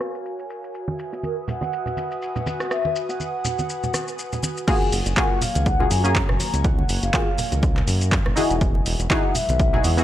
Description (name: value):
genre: deep house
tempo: 122 BPM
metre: 4/4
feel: swing 56% on 16ths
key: F# major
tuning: A4 = 440 Hz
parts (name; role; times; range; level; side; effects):
- airy breathy pad; sustained chords; 0.0-10.0 s; E3 to D#6; -32 LUFS; equal; chorus, sidechain pumping
- punchy analog drum machine; drums; 0.0-10.0 s; crash cymbal, handclaps, hi-hat, rim click, shaker; -28 LUFS; equal; none
- congas and bongos; percussion; 0.9-10.0 s; none; -31 LUFS; right 2 dB; none
- mellow horn-like synth lead; melody; 1.2-10.0 s; A#4 to A#5; -27 LUFS; left 1 dB; lush chorus, analog delay
- filtered dub chord stab; stabs; 4.7-10.0 s; A#3 to G#4; -24 LUFS; left 1 dB; lush chorus, cassette tape, sidechain pumping, analog delay
- electronic kick drum; drums; 4.7-9.7 s; none; -22 LUFS; equal; none
- smooth synth bass; bass; 4.9-10.0 s; E1 to F#2; -22 LUFS; equal; tube saturation, sidechain pumping
room: little or no reverb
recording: dry, gritty hardware recording, low-pass filter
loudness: -20 LUFS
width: side -12 dB against mid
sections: 0.0-4.7 A section; 4.7-10.0 B section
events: filter sweep on analog synth pad 0.0-4.7; filter sweep 0.0-4.7; drop 4.7-10.0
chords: 0.0 F#maj9; 0.7 Emaj9; 4.7 F#maj9; 8.6 Emaj9